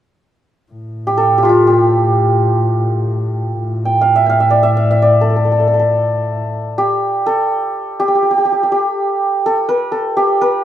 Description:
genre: persian.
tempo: free time.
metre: none.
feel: none.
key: A dastgah shur.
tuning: A4 = 444 Hz.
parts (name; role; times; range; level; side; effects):
muted double bass; drone; 0.7-6.6 s; A2; -17 LUFS; equal; none.
santur; melody; 1.1-10.6 s; F4 to G5; -13 LUFS; equal; none.
room: wet studio ambience, RT60 0.5 s.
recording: heard from further back in the room.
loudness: -12 LUFS.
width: side -11 dB against mid.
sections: 0.7-6.5 A section; 6.5-10.6 B section.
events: none.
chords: none.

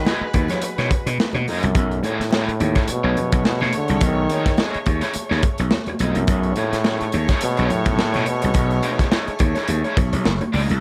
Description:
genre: funk.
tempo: 106 BPM.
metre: 4/4.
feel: swing 56% on 16ths.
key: B mixolydian.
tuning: A4 = 440 Hz.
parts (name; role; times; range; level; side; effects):
clear trombone; melody; 0.0-9.1 s; F#2 to D#3; -26 LUFS; equal; slapback echo.
warm horn section; second line; 0.0-10.5 s; G#3 to C#5; -31 LUFS; equal; plate reverb.
raw garage guitar; accompaniment; 0.1-10.7 s; A3 to D#5; -29 LUFS; equal; overdrive, harmonic tremolo, plate reverb.
crunchy breakbeat drum kit; drums; 0.1-10.8 s; hi-hat, kick drum, snare drum; -24 LUFS; equal; none.
congas; percussion; 0.1-10.5 s; none; -34 LUFS; equal; none.
gritty slap bass; bass; 0.2-10.8 s; F#1 to B2; -24 LUFS; equal; overdrive.
room: light reverb.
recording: none.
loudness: -20 LUFS.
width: mono.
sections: 0.0-10.8 A section.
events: none.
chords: 0.0 B13.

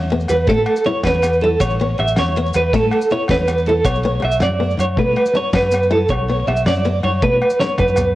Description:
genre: highlife guitar band.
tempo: 107 BPM (dotted quarters).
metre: 12/8.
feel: straight.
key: A major.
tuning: A4 = 440 Hz.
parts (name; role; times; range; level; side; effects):
picked old ladder-braced acoustic guitar; accompaniment; 0.0-8.0 s; A3 to E4; -23 LUFS; left 4 dB; none.
fingered electric bass; bass; 0.0-8.2 s; A1 to B2; -20 LUFS; equal; none.
congas; percussion; 0.0-8.1 s; none; -29 LUFS; left 3 dB; none.
damped 70s drum kit; drums; 0.1-8.1 s; kick drum, ride cymbal, snare drum, toms; -24 LUFS; equal; none.
maracas; percussion; 0.2-8.1 s; none; -37 LUFS; left 3 dB; none.
clean electric guitar; arpeggios; 0.3-8.1 s; A4 to E5; -17 LUFS; right 2 dB; tremolo, tape echo.
agogo bells; percussion; 0.3-8.2 s; none; -28 LUFS; left 2 dB; none.
room: small room ambience.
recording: home recording on cassette.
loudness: -14 LUFS.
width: side -15 dB against mid.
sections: 0.0-8.2 A section.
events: drum fill 7.2-8.2.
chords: 0.0 A; 3.8 Bmadd9.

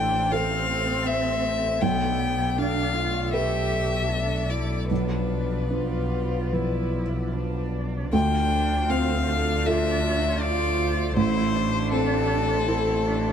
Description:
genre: neoclassical piano and strings.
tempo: 77 BPM.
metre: 4/4.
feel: uneven beats, rubato.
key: unclear.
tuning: A4 = 440 Hz.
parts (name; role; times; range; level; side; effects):
rich violin; melody; 0.0-13.3 s; A4 to G5; -27 LUFS; left 5 dB; none.
dark cello; second line; 0.0-13.3 s; B3 to G4; -31 LUFS; right 4 dB; none.
felt-muted upright piano; accompaniment; 0.0-13.3 s; A1 to C5; -28 LUFS; right 2 dB; none.
chorused pulse-width pad; sustained chords; 0.0-13.3 s; F3 to D5; -35 LUFS; equal; none.
warm double bass; bass; 0.0-13.3 s; A1 to D2; -28 LUFS; equal; none.
room: moderate spring reverb, RT60 2.2 s.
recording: heard from further back in the room.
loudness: -22 LUFS.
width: side -8 dB against mid.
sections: 0.0-8.1 A section; 8.1-13.3 B section.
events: none.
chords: 0.0 Am; 1.8 Gadd9/B; 4.9 Bdim; 8.1 Dm7; 11.2 Am.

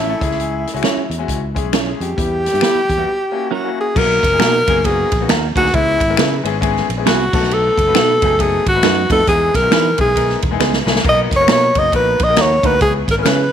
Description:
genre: uptempo 1960s-style soul.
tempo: 136 BPM.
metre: 4/4.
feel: swing 61% on 8ths.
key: B major from 4.0 s.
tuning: A4 = 440 Hz.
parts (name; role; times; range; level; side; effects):
breathy tenor saxophone; melody; 0.0-13.5 s; E4 to D#5; -16 LUFS; equal; none.
clear grand piano; accompaniment; 0.0-13.4 s; F#3 to A5; -23 LUFS; left 11 dB; none.
clean electric guitar; stabs; 0.0-13.4 s; F#3 to C#5; -21 LUFS; right 12 dB; phaser, slapback echo.
fingered electric bass; bass; 0.0-13.5 s; E1 to E3; -22 LUFS; equal; none.
swinging big-band drum kit; drums; 0.2-13.4 s; crash cymbal, hi-hat, kick drum, ride cymbal, snare drum; -19 LUFS; equal; none.
finger snap; percussion; 0.8-13.4 s; none; -25 LUFS; left 11 dB; none.
room: light reverb, studio reverb.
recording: 1960s-style stereo with parts hard left and right.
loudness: -13 LUFS.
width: side -9 dB against mid.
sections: 0.0-4.0 A section; 4.0-13.5 B section.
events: grand piano fill 0.0-0.4; break 3.1-4.0; drum fill 10.6-11.0.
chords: 0.2 C#m; 2.2 Em; 3.1 F#7; 4.0 Bmaj7; 5.7 C#m7; 7.3 B7; 9.3 Emaj7; 11.0 Bmaj7; 12.8 C#m7.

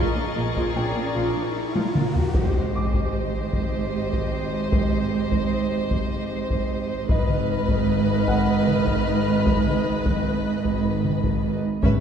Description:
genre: cinematic, suspense film score.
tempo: 76 BPM.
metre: 3/4.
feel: straight.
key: unclear.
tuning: A4 = 440 Hz.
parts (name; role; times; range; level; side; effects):
dark studio violin section; melody; 0.0-11.9 s; D5 to E5; -34 LUFS; left 3 dB; none.
warm chamber violin section; second line; 0.0-11.9 s; G#4 to B#4; -30 LUFS; left 2 dB; none.
warm studio viola section; accompaniment; 0.0-11.9 s; D#3 to G4; -32 LUFS; right 1 dB; none.
dark chamber cello section; bass; 0.0-11.9 s; G#2 to A#2; -26 LUFS; right 6 dB; none.
warm symphonic double bass section; bass; 0.0-11.9 s; G#1 to A#1; -28 LUFS; equal; none.
riser and impact; sound effects; 0.0-4.7 s; none; -29 LUFS; left 1 dB; none.
felt-muted upright piano; texture; 0.0-11.9 s; D#5 to B6; -36 LUFS; left 1 dB; none.
warm chamber violin section; texture; 0.0-1.9, 7.1-12.0 s; B5 to A6; -36 LUFS; left 5 dB; none.
solo taiko drums; drums; 0.6-12.0 s; none; -26 LUFS; left 1 dB; none.
timpani; percussion; 11.8-12.0 s; G#2; -21 LUFS; equal; none.
room: wet scoring stage reverb, RT60 2.0 s.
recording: heard from further back in the room.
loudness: -20 LUFS.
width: side -8 dB against mid.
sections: 0.0-2.4 A section; 2.4-12.0 B section.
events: riser 0.0-2.4; drum fill 1.8-2.4; impact 2.4-4.7.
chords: 0.0 A#7; 2.4 D#6/G#; 7.1 G#m.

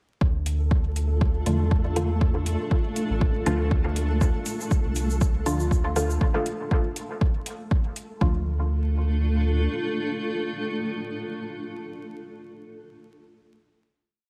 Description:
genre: dub techno.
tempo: 120 BPM.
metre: 4/4.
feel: swing 55% on 16ths.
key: D minor.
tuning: A4 = 441 Hz.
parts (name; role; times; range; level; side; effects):
granular cloud pad; sustained chords; 0.9-12.3 s; A3 to A4; -34 LUFS; equal; built-in reverb, sidechain pumping.
round analog bass; bass; 0.2-9.7 s; A1 to E2; -27 LUFS; equal; sidechain pumping.
electronic kick drum; drums; 0.2-8.3 s; none; -25 LUFS; equal; overdrive.
flickering grainy texture; texture; 0.6-8.2 s; A3 to A4; -39 LUFS; equal; built-in reverb, sidechain pumping.
electronic hi-hat; drums; 0.5-8.1 s; none; -40 LUFS; equal; overdrive.
filtered dub chord stab; stabs; 1.5-12.3 s; D3 to F4; -32 LUFS; equal; phaser, sidechain pumping, dub echo.
egg shaker; percussion; 4.2-6.2 s; none; -40 LUFS; equal; none.
room: light reverb.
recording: vinyl crackle.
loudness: -25 LUFS.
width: mono.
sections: 0.2-8.2 groove; 8.2-12.2 final chord.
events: none.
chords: 0.2 Dm.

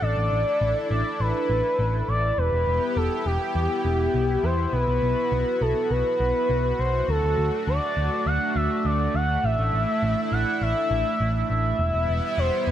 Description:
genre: synthwave.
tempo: 102 BPM.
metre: 4/4.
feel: straight.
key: E minor.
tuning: A4 = 440 Hz.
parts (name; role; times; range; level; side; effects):
expressive portamento lead; melody; 0.0-12.7 s; G4 to F#5; -24 LUFS; equal; chorus.
chorused pulse-width pad; sustained chords; 0.0-12.7 s; G3 to A4; -29 LUFS; equal; none.
hollow-body short-scale picked electric bass; bass; 0.0-12.7 s; E1 to E2; -25 LUFS; equal; none.
room: light reverb.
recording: none.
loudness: -21 LUFS.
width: side -11 dB against mid.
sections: 0.0-12.7 A section.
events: none.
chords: 0.0 Asus4; 2.4 Em; 4.7 Bsus4; 7.1 D; 9.4 Asus4; 11.8 Em.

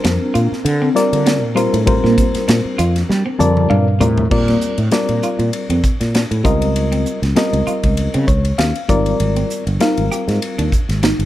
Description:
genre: electric jazz fusion.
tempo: 98 BPM.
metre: 4/4.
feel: swing 55% on 16ths.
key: Bb major, Bb mixolydian from 4.3 s.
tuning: A4 = 437 Hz.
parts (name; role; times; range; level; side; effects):
reed electric piano; accompaniment; 0.0-10.7 s; G3 to A5; -18 LUFS; left 2 dB; fast tremolo.
ethereal airy pad; sustained chords; 0.0-4.3 s; C4 to Bb4; -28 LUFS; right 1 dB; none.
clean electric guitar; stabs; 0.0-11.2 s; Bb3 to G4; -22 LUFS; right 2 dB; wide subtle chorus.
fretless electric bass; bass; 0.0-11.3 s; G1 to G3; -17 LUFS; equal; analog chorus.
modern studio drum kit; drums; 0.0-11.3 s; crash cymbal, hi-hat, kick drum, ride cymbal, snare drum, toms; -20 LUFS; equal; none.
room: light reverb.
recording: dark, warm production.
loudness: -14 LUFS.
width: side -14 dB against mid.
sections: 0.0-4.3 A section; 4.3-11.3 B section.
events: drum fill 3.1-4.3; reed electric piano fill 3.1-4.3, 8.0-9.2.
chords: 0.0 Bbmaj9; 4.3 Bbadd9; 6.4 Dbmaj9; 8.9 Abmaj9.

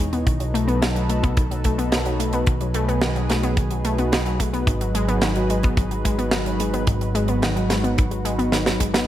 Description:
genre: synthwave.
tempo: 109 BPM.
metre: 4/4.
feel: straight.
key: unclear.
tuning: A4 = 439 Hz.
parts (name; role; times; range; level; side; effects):
lush unison pad; sustained chords; 0.0-9.1 s; E3 to C#5; -26 LUFS; right 1 dB; chorus, sidechain pumping.
wide unison pluck; arpeggios; 0.0-9.1 s; D#3 to B3; -25 LUFS; left 2 dB; digital delay.
picked electric bass; bass; 0.0-9.0 s; E1 to B1; -25 LUFS; equal; none.
tight metal drum kit; drums; 0.1-9.1 s; hi-hat, snare drum; -25 LUFS; right 2 dB; none.
kick drum; drums; 0.3-8.9 s; none; -21 LUFS; equal; none.
room: light reverb, small room ambience.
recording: none.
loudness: -19 LUFS.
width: side -12 dB against mid.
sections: 0.0-9.1 A section.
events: drum fill 8.5-9.1.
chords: 0.3 B7; 4.7 G#m7.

